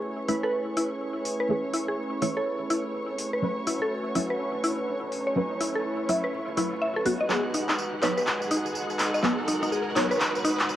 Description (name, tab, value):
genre	deep house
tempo	124 BPM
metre	4/4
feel	swing 61% on 16ths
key	unclear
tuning	A4 = 437 Hz
part	warm analog pad	sustained chords	0.0-10.8 s	G#3 to B4	-32 LUFS	right 1 dB	lush chorus
part	filtered dub chord stab	stabs	0.0-10.1 s	E3 to E5	-30 LUFS	equal	phaser, ensemble chorus, tape echo
part	riser	sound effects	0.0-10.8 s	none	-37 LUFS	right 1 dB	none
part	warm studio violin section	texture	0.0-10.8 s	C#5 to F#6	-36 LUFS	equal	none
part	glassy wavetable pluck	melody	0.3-2.4, 8.0-10.1 s	G#4 to C#5	-33 LUFS	right 1 dB	chorus, cassette tape, tape echo
part	mallet-like synth pluck	arpeggios	0.3-10.5 s	D#4 to E5	-30 LUFS	left 1 dB	chorus, tape echo
part	deep house drum kit	drums	0.3-10.8 s	handclaps, hi-hat, tambourine	-29 LUFS	equal	none
room	wet spring reverb, RT60 1.3 s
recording	home recording on cassette, vinyl crackle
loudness	-25 LUFS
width	side -12 dB against mid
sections	0.0-10.8 A section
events	build-up 0.0-10.8; riser 0.0-10.8; filter sweep on synth stab 0.0-10.8; drum fill 7.3-10.8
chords	0.0 B13sus4; 3.4 A69; 7.1 G#m7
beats	0.04 0.53 1.01 | 1.49 1.98 2.46 2.94 | 3.43 3.91 4.40 4.88 | 5.37 5.85 6.33 6.82 | 7.30 7.78 8.27 8.75 | 9.23 9.72 10.20 10.69